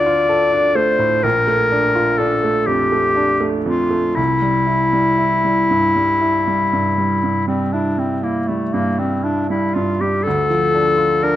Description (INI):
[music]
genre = classical, romantic duo for clarinet and grand piano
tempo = 38-44 BPM (dotted quarters)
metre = 12/8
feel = rubato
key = unclear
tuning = A4 = 440 Hz
[part]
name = clear clarinet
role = melody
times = 0.0-11.4 s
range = A3 to D5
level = -16 LUFS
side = left 2 dB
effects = none
[part]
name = clear baby grand piano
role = accompaniment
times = 0.0-11.4 s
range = Bb1 to A4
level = -19 LUFS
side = right 3 dB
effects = none
[sound]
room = light reverb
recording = close, detailed microphones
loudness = -15 LUFS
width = side -13 dB against mid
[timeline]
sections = 0.0-11.4 A section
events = none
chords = 0.0 Dm; 1.2 Bbmaj7; 4.2 C; 10.3 Dm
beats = 1.24 2.69 | 4.18 5.71 7.22 8.72 | 10.25